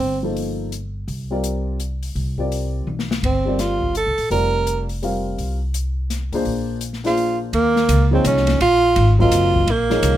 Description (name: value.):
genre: modal jazz.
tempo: 167 BPM.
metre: 3/4.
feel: swing 63% on 8ths.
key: unclear.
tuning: A4 = 440 Hz.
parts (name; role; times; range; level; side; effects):
warm tenor saxophone; melody; 0.0-0.2, 3.3-4.9, 7.1-10.2 s; Bb3 to Bb4; -18 LUFS; right 2 dB; none.
upright bass; bass; 0.0-10.2 s; F1 to Eb2; -22 LUFS; equal; none.
open jazz drum kit; drums; 0.0-10.1 s; hi-hat, kick drum, ride cymbal, snare drum, toms; -28 LUFS; left 3 dB; none.
dark upright piano; accompaniment; 0.2-10.2 s; F3 to F5; -24 LUFS; left 2 dB; none.
room: little or no reverb.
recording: close, detailed microphones.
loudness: -17 LUFS.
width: side -12 dB against mid.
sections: 0.0-7.5 A section; 7.5-10.2 B section.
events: drum fill 2.9-3.2.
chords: 0.0 C9sus4; 6.5 Bb7; 7.5 Ebm9.